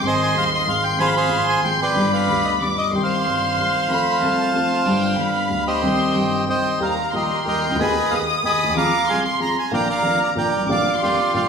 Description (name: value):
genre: tango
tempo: 186 BPM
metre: 3/4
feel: rubato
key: C harmonic minor, Eb major from 6.8 s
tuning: A4 = 441 Hz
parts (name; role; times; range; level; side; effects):
- bandoneon; melody; 0.0-11.5 s; F4 to C6; -20 LUFS; right 2 dB; none
- warm studio violin section; second line; 0.0-11.5 s; G5 to Eb6; -24 LUFS; left 2 dB; none
- warm baby grand piano; accompaniment; 0.0-11.5 s; Eb1 to A4; -23 LUFS; left 1 dB; none
room: wet recital hall reverb, RT60 1.5 s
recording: recorded in a church or concert hall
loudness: -17 LUFS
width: side -6 dB against mid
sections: 0.0-6.8 A section; 6.8-11.5 B section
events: none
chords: 0.0 Ab; 1.0 Fm/Ab; 2.0 G; 2.9 Cm; 3.9 F; 4.9 Gsus4; 5.2 G; 5.8 Cm; 6.8 Eb; 7.8 Abm/Eb; 8.7 Fm; 9.7 Bb; 10.7 Bb6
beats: | 0.03 0.35 0.67 | 0.99 1.31 1.64 | 1.96 2.28 2.61 | 2.93 3.26 3.58 | 3.90 4.22 4.55 | 4.87 5.19 5.51 | 5.83 6.16 6.49 | 6.81 7.13 7.46 | 7.78 8.10 8.43 | 8.75 9.07 9.39 | 9.71 10.03 10.36 | 10.68 11.01 11.33